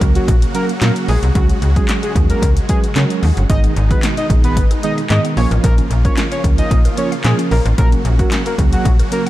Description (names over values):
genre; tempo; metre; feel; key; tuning
dance-pop; 112 BPM; 4/4; straight; F# major; A4 = 440 Hz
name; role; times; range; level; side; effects
mellow tine electric piano; accompaniment; 0.0-9.3 s; D#3 to B4; -22 LUFS; right 5 dB; fast stereo tremolo, sidechain pumping
supersaw chords; sustained chords; 0.0-9.3 s; B2 to F#4; -25 LUFS; equal; sidechain pumping
slap-like FM bass; bass; 0.0-9.0 s; G1 to C#3; -15 LUFS; equal; sidechain pumping
punchy analog drum machine; drums; 0.0-9.3 s; handclaps, hi-hat, kick drum, snare drum; -16 LUFS; equal; overdrive
fat analog lead; melody; 0.2-9.2 s; F#4 to D#5; -23 LUFS; left 1 dB; dub echo
mallet-like synth pluck; arpeggios; 3.5-9.3 s; D#3 to F#5; -28 LUFS; left 2 dB; chorus, sidechain pumping, dub echo
room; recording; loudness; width
little or no reverb; dark, warm production; -12 LUFS; side -15 dB against mid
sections
0.0-9.3 A section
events
none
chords
0.0 F#/A#; 1.4 C#sus4; 3.5 G#m; 5.4 A#m; 7.8 F#/A#